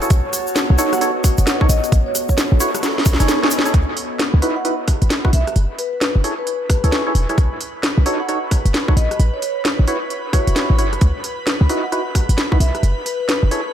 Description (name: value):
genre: UK garage, two-step garage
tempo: 132 BPM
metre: 4/4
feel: swing 63% on 16ths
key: C# minor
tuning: A4 = 440 Hz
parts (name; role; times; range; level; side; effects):
- percussive organ stab; stabs; 0.0-13.6 s; D#4 to C#5; -23 LUFS; right 1 dB; wide subtle chorus, dub echo
- garage drum kit; drums; 0.0-13.6 s; hi-hat, rim click, snare drum; -22 LUFS; equal; dub echo
- egg shaker; percussion; 0.0-3.7 s; none; -27 LUFS; left 3 dB; none
- warbly tape-like pad; texture; 0.0-3.7 s; B3 to A5; -25 LUFS; equal; chorus, built-in reverb, sidechain pumping
- short 808-style bass; bass; 0.1-13.5 s; E1 to C#2; -15 LUFS; equal; none
- electronic kick drum; drums; 0.1-12.6 s; none; -17 LUFS; equal; none
- vibraphone with soft mallets; melody; 0.9-13.7 s; B4 to F#5; -26 LUFS; equal; dub echo
- airy breathy pad; sustained chords; 3.7-13.7 s; B4 to B5; -30 LUFS; equal; chorus, sidechain pumping
room: light reverb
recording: echo-heavy mix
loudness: -15 LUFS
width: side -10 dB against mid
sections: 0.0-3.7 A section; 3.7-13.7 B section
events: drop 0.0-3.7; drum fill 2.8-3.7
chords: 0.1 B7; 1.9 A6; 2.8 B13; 3.7 C#m11 (rootless); 5.6 F#m7 (rootless); 7.4 B7; 9.2 A6; 11.0 C#m11 (rootless); 12.8 F#m7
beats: | 0.10 0.56 1.01 1.47 | 1.92 2.38 2.83 3.29 | 3.74 4.20 4.65 5.10 | 5.56 6.01 6.47 6.92 | 7.38 7.83 8.29 8.74 | 9.20 9.65 10.10 10.56 | 11.01 11.47 11.92 12.38 | 12.83 13.29